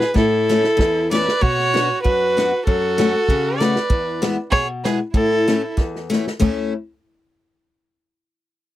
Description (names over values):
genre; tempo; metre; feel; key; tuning
alpine folk, alpine dance band; 96 BPM; 2/4; swing 54% on 8ths, rubato; A major; A4 = 440 Hz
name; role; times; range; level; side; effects
warm fiddle; melody; 0.0-5.7 s; A4 to D5; -19 LUFS; equal; none
rich violin; second line; 0.0-5.7 s; E4 to B4; -25 LUFS; right 6 dB; none
natural country drum kit; drums; 0.0-6.6 s; china cymbal, hi-hat, kick drum, snare drum, toms; -21 LUFS; equal; none
picked steel-string acoustic guitar; accompaniment; 0.1-6.7 s; E2 to F#4; -22 LUFS; left 4 dB; none
room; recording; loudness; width
light reverb; dry, close 1970s-style studio recording; -16 LUFS; side -14 dB against mid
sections
0.0-1.4 A section; 1.4-6.4 B section; 6.4-7.7 C section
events
drum fill 0.2-1.4, 5.8-6.4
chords
0.2 A; 1.4 Bm; 2.7 F#m; 3.9 E; 5.1 A